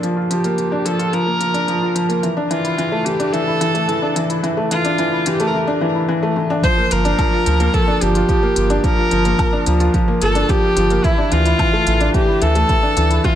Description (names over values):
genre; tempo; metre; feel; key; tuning
piano and strings electronica; 109 BPM; 4/4; straight; G dorian; A4 = 440 Hz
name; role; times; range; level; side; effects
warm viola; melody; 0.0-13.4 s; E4 to C5; -20 LUFS; equal; low-pass filter, ping-pong delay
felt-muted upright piano; riff; 0.0-13.4 s; E3 to F4; -18 LUFS; left 1 dB; ping-pong delay
organic electronic drum kit; drums; 0.0-13.4 s; hi-hat, toms, woodblock; -28 LUFS; left 2 dB; high-pass filter on hats, studio reverb, high-pass filter on toms, high-pass filter on perc
warm sub bass; bass; 0.3-13.2 s; G1 to D2; -18 LUFS; equal; sidechain pumping, high-pass filter
electronic kick drum; drums; 6.6-13.4 s; none; -18 LUFS; equal; studio reverb
room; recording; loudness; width
light reverb; none; -14 LUFS; side -11 dB against mid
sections
0.0-6.6 A section; 6.6-13.4 B section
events
build-up 0.0-6.6; drum fill 6.4; drop 6.6-13.4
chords
0.0 Gm7; 2.2 Dmadd9; 6.6 Gm7; 11.0 Dmadd9